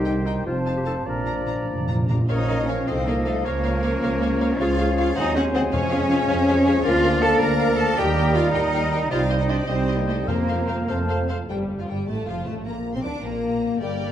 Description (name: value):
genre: quick classical-period movement for symphony orchestra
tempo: 97-108 BPM (dotted quarters)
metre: 6/8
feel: rubato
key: Bb minor, Bb major from 6.9 s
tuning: A4 = 439 Hz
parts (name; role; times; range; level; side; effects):
- clear clarinet; second line; 0.0-11.3 s; Eb4 to C5; -34 LUFS; left 1 dB; none
- clear oboe; second line; 0.0-11.3 s; C5 to F5; -35 LUFS; equal; none
- large flute ensemble; second line; 0.0-11.3 s; F5 to Bb5; -33 LUFS; left 3 dB; none
- mellow bassoon; accompaniment; 0.0-11.3 s; Eb3 to G3; -29 LUFS; right 1 dB; none
- dark French horn section; sustained chords; 0.0-14.1 s; F3 to Eb4; -28 LUFS; left 4 dB; none
- dark chamber double bass section; bass; 0.0-14.1 s; F1 to F2; -26 LUFS; right 3 dB; none
- warm chamber cello section; bass; 0.0-14.1 s; C2 to Bb4; -25 LUFS; right 1 dB; none
- rich chamber violin section; melody; 0.1-14.1 s; G3 to Bb5; -36 LUFS; left 4 dB; none
- rich symphonic violin section; second line; 0.1-14.1 s; A4 to D6; -35 LUFS; left 1 dB; none
- rich chamber viola section; accompaniment; 0.1-14.1 s; F3 to Eb5; -33 LUFS; left 1 dB; none
- timpani; percussion; 1.1-2.3, 5.7-6.3, 10.3-10.8 s; F2 to Bb2; -28 LUFS; equal; none
room: wet recital hall reverb, RT60 1.9 s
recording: dark, warm production, faint mains hum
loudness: -20 LUFS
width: side -10 dB against mid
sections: 0.0-2.3 A section; 2.3-11.5 B section; 11.5-14.1 A section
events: timpani fill 1.1-2.3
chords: 0.5 F7; 1.1 Bb; 2.3 Bbm; 2.9 F7/C; 3.5 Bbm/Db; 4.6 Db; 5.2 Ab7/Eb; 5.7 Db/F; 6.9 Bb/D; 8.0 Eb; 9.1 Cm; 10.3 Fsus4; 10.9 F; 11.5 Fsus2/G; 12.1 F; 12.7 Bb